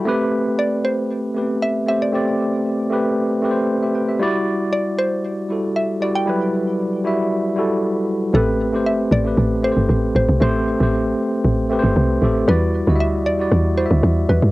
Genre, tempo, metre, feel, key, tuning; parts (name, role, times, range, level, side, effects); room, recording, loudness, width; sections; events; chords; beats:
amapiano; 116 BPM; 4/4; straight; A dorian; A4 = 440 Hz
tine electric piano; accompaniment; 0.0-14.5 s; F#3 to G5; -19 LUFS; equal; fast stereo tremolo, cassette tape
mallet-like synth pluck; melody; 0.6-14.5 s; A4 to G5; -23 LUFS; equal; chorus, cassette tape, tape echo
woody log drum bass; bass; 8.3-14.5 s; G1 to G2; -17 LUFS; equal
little or no reverb; home recording on cassette; -16 LUFS; side -19 dB against mid
0.0-8.3 A section; 8.3-14.5 B section
0.1 Am9; 4.2 Em9; 8.3 Am9; 12.5 Em9
| 0.06 0.58 1.10 1.62 | 2.13 2.65 3.17 3.69 | 4.20 4.72 5.24 5.75 | 6.27 6.79 7.31 7.82 | 8.34 8.86 9.38 9.89 | 10.41 10.93 11.44 11.96 | 12.48 12.99 13.51 14.03